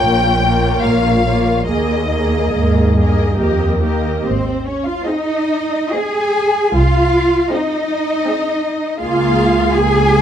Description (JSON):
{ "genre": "classical, slow romantic movement for string orchestra", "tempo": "67-84 BPM", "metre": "3/4", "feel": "rubato", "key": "Ab major", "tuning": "A4 = 440 Hz", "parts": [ { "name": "rich symphonic violin section", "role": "melody", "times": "0.0-10.2 s", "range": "C5 to Ab5", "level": "-22 LUFS", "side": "left 3 dB", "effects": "none" }, { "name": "warm symphonic violin section", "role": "second line", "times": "0.0-10.2 s", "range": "Bb4 to Ab5", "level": "-22 LUFS", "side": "left 3 dB", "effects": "none" }, { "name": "rich symphonic viola section", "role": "accompaniment", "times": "0.0-10.2 s", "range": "Bb3 to Ab4", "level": "-20 LUFS", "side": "equal", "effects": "none" }, { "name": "rich symphonic double bass section", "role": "bass", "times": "0.0-10.2 s", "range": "Ab1 to Eb2", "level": "-18 LUFS", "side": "right 2 dB", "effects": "none" }, { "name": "warm symphonic cello section", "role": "bass", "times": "0.0-10.2 s", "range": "Eb2 to Ab4", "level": "-17 LUFS", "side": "right 1 dB", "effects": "none" } ], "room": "moderate large studio reverb, RT60 1.4 s", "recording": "dark, warm production", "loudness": "-13 LUFS", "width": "side -9 dB against mid", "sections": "0.0-4.3 A section; 4.3-10.2 B section", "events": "none", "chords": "0.0 Bbm; 1.7 Ebsus4; 3.4 Eb; 4.3 Ab; 6.7 Ab/C; 9.0 Bbm7/Db" }